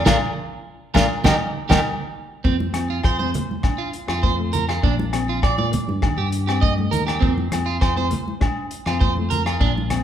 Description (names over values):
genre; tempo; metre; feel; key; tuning
highlife guitar band; 100 BPM; 4/4; straight; F mixolydian; A4 = 435 Hz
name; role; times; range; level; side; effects
mellow electric guitar; melody; 0.0-1.8 s; Bb4 to G5; -23 LUFS; left 1 dB; none
fingered electric bass; bass; 0.0-10.0 s; Bb1 to Bb2; -25 LUFS; equal; none
mellow electric guitar; accompaniment; 0.1-10.0 s; F3 to Eb4; -29 LUFS; left 3 dB; none
electric guitar at the edge of break-up; arpeggios; 0.1-9.7 s; C4 to Eb5; -25 LUFS; right 6 dB; spring reverb
warm soul drum kit; drums; 0.1-10.0 s; hi-hat, kick drum, rim click, snare drum; -22 LUFS; equal; none
agogo bells; percussion; 0.1-10.0 s; none; -28 LUFS; left 4 dB; none
congas; percussion; 0.1-10.0 s; none; -28 LUFS; right 2 dB; none
room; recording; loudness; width
wet large studio reverb, RT60 1.2 s; band playing live in one room; -18 LUFS; side -10 dB against mid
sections
0.0-2.4 A section; 2.4-10.0 B section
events
band accent 0.1-2.4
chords
0.1 Bb; 1.2 Eb; 2.4 Fsus4; 4.8 Bb; 6.0 Eb; 7.2 Fsus4